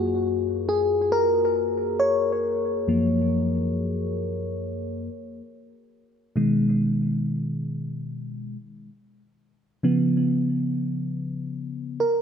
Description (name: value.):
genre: R&B.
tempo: 69 BPM.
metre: 4/4.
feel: swing 54% on 16ths.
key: F# major.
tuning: A4 = 440 Hz.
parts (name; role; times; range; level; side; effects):
mellow FM electric piano; solo; 0.0-12.2 s; F#2 to C#5; -22 LUFS; left 1 dB; chorus, tape echo.
room: moderate spring reverb, RT60 2.9 s.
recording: echo-heavy mix.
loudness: -22 LUFS.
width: side -7 dB against mid.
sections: 0.0-12.2 A section.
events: FM electric piano solo 0.0-12.2.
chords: 0.0 F#maj7; 5.0 B6; 8.5 C#7.